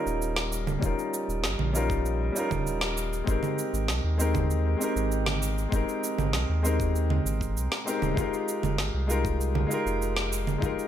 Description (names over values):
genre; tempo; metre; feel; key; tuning
sunset chillout; 98 BPM; 4/4; straight; unclear; A4 = 441 Hz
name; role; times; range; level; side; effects
warm grand piano; accompaniment; 0.0-10.9 s; G3 to Bb4; -29 LUFS; moving between left 6 dB and right 2 dB; auto-pan, vintage 12-bit sampler grit, low-pass filter, ping-pong delay
warm sub bass; bass; 0.1-10.7 s; Eb1 to Eb2; -28 LUFS; equal; none
electronic cabasa, snare drum and congas; drums; 0.1-10.9 s; none; -31 LUFS; right 4 dB; small room reverb
electronic kick drum; drums; 0.8-10.7 s; none; -31 LUFS; equal; small room reverb
room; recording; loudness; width
moderate plate reverb, RT60 1.6 s, digital ambience; dreamy mix soaked in reverb; -25 LUFS; side -10 dB against mid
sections
0.0-10.9 A section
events
none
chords
0.0 Eb9; 3.3 Abmaj9; 8.2 Fm11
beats
0.21 | 0.82 1.44 2.05 2.66 | 3.27 3.89 4.50 5.11 | 5.72 6.33 6.95 7.56 | 8.17 8.78 9.40 10.01 | 10.62